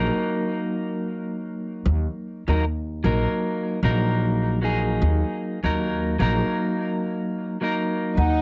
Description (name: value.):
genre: trip hop.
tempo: 76 BPM.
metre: 4/4.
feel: swing 58% on 16ths.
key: Eb minor.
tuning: A4 = 440 Hz.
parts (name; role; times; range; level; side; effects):
clean electric guitar; accompaniment; 0.0-8.4 s; Gb3 to Bb4; -27 LUFS; equal; harmonic tremolo, vintage 12-bit sampler grit, low-pass filter, cassette tape, tape echo.
upright bass; bass; 0.0-8.4 s; Bb1 to Eb2; -25 LUFS; equal; none.
bright baroque flute; melody; 8.2-8.4 s; Gb5; -28 LUFS; equal; cassette tape.
rich studio string section; sustained chords; 8.2-8.4 s; Eb4; -27 LUFS; equal; cassette tape.
room: light reverb.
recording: home recording on cassette, nothing above 7.8 kHz.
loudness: -24 LUFS.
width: mono.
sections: 0.0-8.4 A section.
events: none.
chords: 0.0 Ebm.